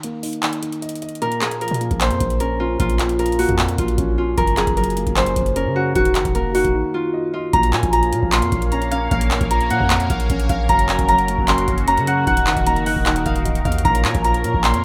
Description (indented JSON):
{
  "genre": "hip hop, trap",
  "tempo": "152 BPM",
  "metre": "4/4",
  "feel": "half-time",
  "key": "Bb minor",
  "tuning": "A4 = 441 Hz",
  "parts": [
    { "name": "dark concert grand piano", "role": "accompaniment", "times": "0.0-14.8 s", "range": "Gb2 to Eb5", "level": "-28 LUFS", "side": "equal", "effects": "low-pass filter" },
    { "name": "booming analog drum machine", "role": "drums", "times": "0.0-14.8 s", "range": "handclaps, hi-hat, kick drum", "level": "-24 LUFS", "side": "equal", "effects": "none" },
    { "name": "Celtic harp", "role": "melody", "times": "1.2-14.8 s", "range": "F4 to C6", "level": "-22 LUFS", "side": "equal", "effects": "low-pass filter" },
    { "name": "long sustained 808-style bass", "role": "bass", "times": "1.7-14.8 s", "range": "Db1 to Db3", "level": "-26 LUFS", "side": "equal", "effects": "none" },
    { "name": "sweeping resonant pad", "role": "sustained chords", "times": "7.5-14.8 s", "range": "Eb3 to F5", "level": "-29 LUFS", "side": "equal", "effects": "chorus" }
  ],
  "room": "light reverb, digital ambience",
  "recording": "rough home demo mix",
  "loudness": "-19 LUFS",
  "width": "mono",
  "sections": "0.0-7.5 A section; 7.5-14.8 B section",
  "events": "break 0.0-1.2, 6.7-7.5; filter sweep 0.0-1.2; kick muted 1.2-1.6",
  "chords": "0.0 Eb5; 1.2 Bbm; 4.4 Gb; 6.0 Ebm; 7.5 Bbm; 10.7 Gb; 12.3 Ebm; 13.8 Bbm"
}